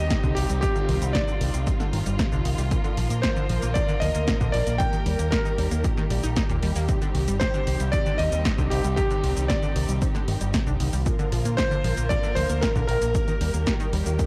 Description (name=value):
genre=italo disco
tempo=115 BPM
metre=4/4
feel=straight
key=C minor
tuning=A4 = 440 Hz
part: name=clear electric grand piano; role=melody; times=0.0-14.3 s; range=G4 to G5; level=-31 LUFS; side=equal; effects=none
part: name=warm studio string section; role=sustained chords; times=0.0-14.3 s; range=D3 to Bb4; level=-34 LUFS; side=equal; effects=none
part: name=analog pluck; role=arpeggios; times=0.0-14.3 s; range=Bb2 to Eb4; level=-35 LUFS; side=equal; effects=chorus, vintage 12-bit sampler grit, analog delay
part: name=fingered electric bass with an envelope filter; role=bass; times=0.0-14.2 s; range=G1 to Bb2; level=-28 LUFS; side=equal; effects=tube saturation
part: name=electronic kick drum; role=drums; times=0.1-14.3 s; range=none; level=-29 LUFS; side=equal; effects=small room ambience
part: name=house drum kit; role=drums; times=0.1-14.3 s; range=cabasa, hi-hat, snare drum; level=-34 LUFS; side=equal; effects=small room ambience
room=little or no reverb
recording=dry, gritty hardware recording, cassette tape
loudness=-24 LUFS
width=mono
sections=0.0-14.3 A section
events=none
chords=0.0 Cmadd9; 2.7 Bb; 4.8 Eb; 6.9 Cmadd9; 11.1 Bb; 13.1 Eb